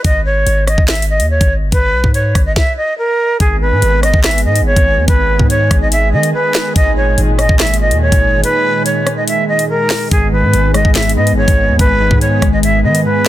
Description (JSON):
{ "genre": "hip hop, drill", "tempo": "143 BPM", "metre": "4/4", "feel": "half-time", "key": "G# minor", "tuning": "A4 = 441 Hz", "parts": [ { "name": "jazz flute", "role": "melody", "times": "0.0-13.3 s", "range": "G#4 to E5", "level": "-15 LUFS", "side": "right 1 dB", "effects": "low-pass filter, ping-pong delay" }, { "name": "long sustained 808-style bass", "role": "bass", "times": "0.0-13.0 s", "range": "G1 to D#3", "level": "-15 LUFS", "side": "equal", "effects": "none" }, { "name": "drill drum kit", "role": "drums", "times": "0.0-13.3 s", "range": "handclaps, hi-hat, kick drum, rim click, snare drum", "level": "-14 LUFS", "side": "equal", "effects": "none" }, { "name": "warm analog pad", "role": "sustained chords", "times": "3.4-13.3 s", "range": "A#2 to G#4", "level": "-20 LUFS", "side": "right 2 dB", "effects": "wide subtle chorus" }, { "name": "warbly lo-fi synth keys", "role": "accompaniment", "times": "10.1-13.3 s", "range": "G#2 to B3", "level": "-17 LUFS", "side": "left 2 dB", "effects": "chorus, low-pass filter" } ], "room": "little or no reverb", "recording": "dense, heavily limited modern master", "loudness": "-10 LUFS", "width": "side -14 dB against mid", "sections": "0.0-3.4 A section; 3.4-13.3 B section", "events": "break 0.0-3.4, 8.4-10.1", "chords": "0.0 D#sus4; 3.4 G#m; 6.8 D#sus4; 10.1 G#m", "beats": "| 0.04 0.46 0.88 1.30 | 1.72 2.14 2.56 2.98 | 3.40 3.82 4.24 4.66 | 5.08 5.50 5.92 6.34 | 6.76 7.18 7.60 8.02 | 8.44 8.86 9.28 9.70 | 10.12 10.53 10.95 11.37 | 11.79 12.21 12.63 13.05" }